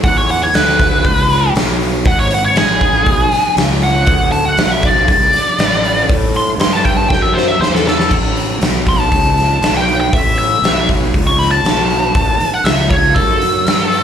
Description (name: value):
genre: blues rock power trio and southern rock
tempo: 119 BPM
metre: 4/4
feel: straight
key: A mixolydian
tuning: A4 = 438 Hz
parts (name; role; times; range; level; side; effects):
- biting lead guitar; melody; 0.0-14.0 s; G#4 to C#6; -15 LUFS; left 1 dB; wah, overdrive, slapback echo, digital delay
- fuzz fingered electric bass; bass; 0.0-14.0 s; G#1 to A2; -18 LUFS; equal; overdrive
- big rock drum kit; drums; 0.0-14.0 s; crash cymbal, hi-hat, kick drum, snare drum; -15 LUFS; equal; none
room: studio ambience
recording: live gig heard through the venue's PA, club reverb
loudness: -11 LUFS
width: side -8 dB against mid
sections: 0.0-8.1 A section; 8.1-14.0 A section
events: lead electric guitar solo 0.0-14.0; drum fill 7.1-8.1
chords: 0.0 E7; 4.1 D5; 6.1 A5; 8.1 A